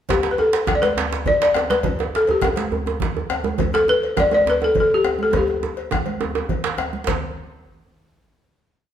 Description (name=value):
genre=west african traditional, West African drum ensemble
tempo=138 BPM (dotted quarters)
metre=12/8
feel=straight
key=G major pentatonic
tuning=A4 = 439 Hz
part: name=balafon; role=melody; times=0.1-5.8 s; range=G4 to D5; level=-18 LUFS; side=left 1 dB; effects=none
part: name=bombo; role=percussion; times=0.1-7.2 s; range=none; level=-27 LUFS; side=left 1 dB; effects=none
part: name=congas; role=percussion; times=0.1-7.2 s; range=none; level=-29 LUFS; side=right 4 dB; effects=none
part: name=cowbell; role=percussion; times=0.1-7.2 s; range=none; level=-33 LUFS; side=left 6 dB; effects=none
part: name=djembe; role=percussion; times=0.1-7.2 s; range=none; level=-32 LUFS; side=left 2 dB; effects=none
part: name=djembe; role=percussion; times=0.1-7.2 s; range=none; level=-26 LUFS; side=right 5 dB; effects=none
room=wet large studio reverb, RT60 1.3 s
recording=band playing live in one room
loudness=-17 LUFS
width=side -10 dB against mid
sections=0.1-7.1 A section; 7.1-8.8 final hit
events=drum fill 5.3-7.1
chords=none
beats=| 0.10 0.53 0.97 1.41 | 1.85 2.28 2.72 3.16 | 3.59 4.03 4.47 4.90 | 5.34 5.77 6.21 6.64 | 7.07